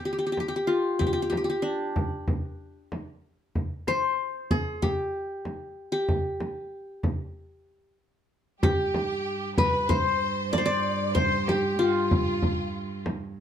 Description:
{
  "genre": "Arabic maqam ensemble",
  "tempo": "95 BPM",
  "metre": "4/4",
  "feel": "straight",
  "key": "G maqam hijaz",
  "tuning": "A4 = 441 Hz",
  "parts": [
    { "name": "qanun", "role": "melody", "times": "0.0-13.1 s", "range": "D4 to D5", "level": "-26 LUFS", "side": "left 2 dB", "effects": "plate reverb" },
    { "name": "frame drum", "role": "percussion", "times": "0.4-13.2 s", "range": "none", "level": "-28 LUFS", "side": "equal", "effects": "none" },
    { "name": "clear studio violin section", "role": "second line", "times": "8.6-13.1 s", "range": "F4 to D5", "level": "-33 LUFS", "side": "right 1 dB", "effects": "none" },
    { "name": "warm cello", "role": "drone", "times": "8.6-13.4 s", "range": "G2", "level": "-33 LUFS", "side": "right 4 dB", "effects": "none" }
  ],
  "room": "moderate studio reverb, RT60 0.7 s",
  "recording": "dark, warm production",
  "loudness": "-24 LUFS",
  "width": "side -9 dB against mid",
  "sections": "0.0-8.6 A section; 8.6-13.4 B section",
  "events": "break 7.4-8.6",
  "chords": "none"
}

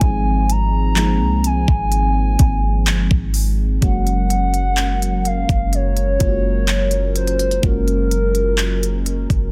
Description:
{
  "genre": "contemporary R&B",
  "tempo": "63 BPM",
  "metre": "4/4",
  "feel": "straight",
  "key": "unclear",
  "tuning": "A4 = 438 Hz",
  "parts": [
    { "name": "hollow clarinet-like synth lead", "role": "melody", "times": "0.0-9.5 s", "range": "Bb4 to Bb5", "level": "-25 LUFS", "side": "equal", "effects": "chorus, tape echo" },
    { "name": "mellow FM electric piano", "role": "accompaniment", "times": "0.0-9.5 s", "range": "F3 to Ab4", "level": "-27 LUFS", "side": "equal", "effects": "chorus" },
    { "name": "hollow soft pad", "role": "sustained chords", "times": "0.0-9.5 s", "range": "F3 to Bb4", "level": "-30 LUFS", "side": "equal", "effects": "chorus" },
    { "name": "clean 808-style bass", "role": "bass", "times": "0.0-9.5 s", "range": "Gb1 to C2", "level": "-21 LUFS", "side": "equal", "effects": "none" },
    { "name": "trap drum kit", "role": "drums", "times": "0.0-9.5 s", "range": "handclaps, hi-hat, kick drum", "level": "-22 LUFS", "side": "equal", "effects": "overdrive" }
  ],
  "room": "little or no reverb",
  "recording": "dense, heavily limited modern master",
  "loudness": "-18 LUFS",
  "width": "mono",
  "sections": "0.0-3.8 A section; 3.8-9.5 B section",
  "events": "none",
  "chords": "0.0 Ab6; 3.8 Gbmaj9"
}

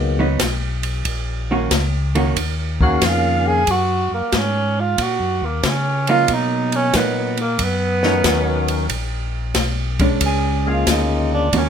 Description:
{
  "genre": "soul jazz organ trio",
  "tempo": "92 BPM",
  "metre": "4/4",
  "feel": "swing 68% on 8ths",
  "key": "Eb minor",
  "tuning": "A4 = 440 Hz",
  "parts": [
    { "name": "percussive tonewheel organ", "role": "melody", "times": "0.0-3.6, 8.0-11.5 s", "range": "Db3 to F5", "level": "-22 LUFS", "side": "left 4 dB", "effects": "slow rotary speaker, overdrive" },
    { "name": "mellow tonewheel organ", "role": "bass", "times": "0.0-11.7 s", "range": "Bb1 to Db3", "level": "-22 LUFS", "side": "left 1 dB", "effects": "chorus vibrato, slow rotary speaker" },
    { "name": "vintage hollow-body jazz guitar", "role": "accompaniment", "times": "0.2-11.7 s", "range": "Eb3 to Gb4", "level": "-21 LUFS", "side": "right 3 dB", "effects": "none" },
    { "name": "open jazz drum kit", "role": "drums", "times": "0.4-11.7 s", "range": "hi-hat, kick drum, ride cymbal, snare drum", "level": "-22 LUFS", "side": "left 1 dB", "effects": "none" },
    { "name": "mellow tenor saxophone", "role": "melody", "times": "2.8-11.7 s", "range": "A#3 to Ab4", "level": "-20 LUFS", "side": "right 2 dB", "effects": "none" }
  ],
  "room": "light reverb",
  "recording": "minimal, uncompressed stereo recording",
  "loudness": "-16 LUFS",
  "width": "side -8 dB against mid",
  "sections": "0.0-11.7 A section",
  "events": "tenor saxophone solo 0.0-11.7",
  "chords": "0.0 Abm7; 1.1 Ebm7; 6.3 Bmaj7; 8.9 Bb7#9"
}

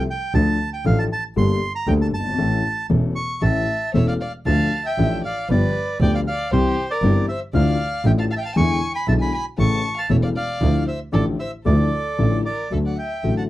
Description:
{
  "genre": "tango",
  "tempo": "117 BPM",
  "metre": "4/4",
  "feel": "rubato",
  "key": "D minor",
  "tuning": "A4 = 440 Hz",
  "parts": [
    { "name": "bandoneon", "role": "melody", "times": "0.0-13.4 s", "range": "C5 to C#6", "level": "-26 LUFS", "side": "right 2 dB", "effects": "none" },
    { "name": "dark upright piano", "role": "accompaniment", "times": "0.0-13.5 s", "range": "E1 to A4", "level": "-22 LUFS", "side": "left 4 dB", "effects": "none" },
    { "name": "rich double bass", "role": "bass", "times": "0.0-13.5 s", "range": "E1 to E2", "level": "-21 LUFS", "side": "right 2 dB", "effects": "none" },
    { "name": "warm violin", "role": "second line", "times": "3.4-13.4 s", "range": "G4 to A5", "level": "-29 LUFS", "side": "left 2 dB", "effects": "none" }
  ],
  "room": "little or no reverb",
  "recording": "dry, close 1970s-style studio recording",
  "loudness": "-18 LUFS",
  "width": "side -15 dB against mid",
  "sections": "0.0-12.7 A section",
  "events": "none",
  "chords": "0.3 Dm; 1.4 Gmadd9; 2.4 A; 4.5 Dm; 5.5 G7; 6.5 C; 7.5 Dmadd9; 8.6 E7; 9.6 A; 10.6 Dmadd9; 12.7 D"
}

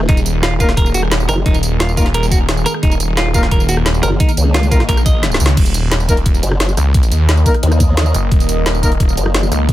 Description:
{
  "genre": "dark technical drum and bass",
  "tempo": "175 BPM",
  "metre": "4/4",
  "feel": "straight",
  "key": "Eb minor",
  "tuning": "A4 = 440 Hz",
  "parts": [
    { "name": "deep dark ambient pad", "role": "sustained chords", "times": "0.0-9.7 s", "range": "Eb3 to Eb5", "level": "-23 LUFS", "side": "equal", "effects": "chorus, built-in reverb, sidechain pumping" },
    { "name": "formant-sweep wobble bass", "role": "bass", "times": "0.0-1.4, 4.0-9.5 s", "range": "Gb1 to Eb2", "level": "-14 LUFS", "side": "equal", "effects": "chorus" },
    { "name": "drum and bass drum kit", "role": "drums", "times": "0.0-9.7 s", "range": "crash cymbal, hi-hat, rim click, snare drum, tambourine", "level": "-20 LUFS", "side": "equal", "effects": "overdrive, small room reverb" },
    { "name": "clean electric guitar", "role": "arpeggios", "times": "0.1-5.2 s", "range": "Eb4 to Eb5", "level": "-21 LUFS", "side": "right 2 dB", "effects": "sidechain pumping, tape echo" },
    { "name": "snarling distorted saw bass", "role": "bass", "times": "0.1-9.7 s", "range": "Eb1 to Eb2", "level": "-16 LUFS", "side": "equal", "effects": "distortion, tube saturation" },
    { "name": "electronic kick drum", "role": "drums", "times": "0.1-9.7 s", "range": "none", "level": "-14 LUFS", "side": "equal", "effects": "overdrive, small room reverb" },
    { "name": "warm brass ensemble", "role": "stabs", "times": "0.6-8.9 s", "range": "Bb3 to Bb4", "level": "-23 LUFS", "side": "left 3 dB", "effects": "tape echo" }
  ],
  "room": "little or no reverb",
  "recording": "none",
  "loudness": "-11 LUFS",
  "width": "side -14 dB against mid",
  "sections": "0.0-5.6 A section; 5.6-9.7 A section",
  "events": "drop 0.0-5.6, 5.6-9.7; drum fill 5.2-5.6; band accent 5.5",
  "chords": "0.0 Eb5"
}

